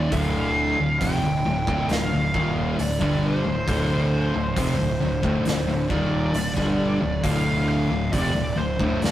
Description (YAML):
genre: stoner and doom metal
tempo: 67 BPM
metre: 4/4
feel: straight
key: D minor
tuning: A4 = 440 Hz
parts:
  - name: fuzz lead guitar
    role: melody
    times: 0.0-9.1 s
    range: C5 to G5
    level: -28 LUFS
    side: right 1 dB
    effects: wah, distortion
  - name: thick fuzz guitar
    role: riff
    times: 0.0-9.1 s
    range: D2 to G3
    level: -26 LUFS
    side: left 3 dB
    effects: distortion
  - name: thick fuzz guitar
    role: riff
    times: 0.0-9.1 s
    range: D2 to G3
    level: -28 LUFS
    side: right 2 dB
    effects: distortion
  - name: fuzz fingered electric bass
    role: bass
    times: 0.0-9.1 s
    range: D1 to G1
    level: -28 LUFS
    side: equal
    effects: overdrive
  - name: raw garage guitar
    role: riff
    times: 0.1-9.1 s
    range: D2 to G3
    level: -30 LUFS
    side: equal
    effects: overdrive
  - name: oversized low-tuned drum kit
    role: drums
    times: 0.1-9.1 s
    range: hi-hat, kick drum, snare drum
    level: -29 LUFS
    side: right 1 dB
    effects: none
room: light reverb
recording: rough rehearsal-room recording, tube saturation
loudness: -20 LUFS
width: side -13 dB against mid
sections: 0.0-9.1 A section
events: none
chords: 0.0 Dm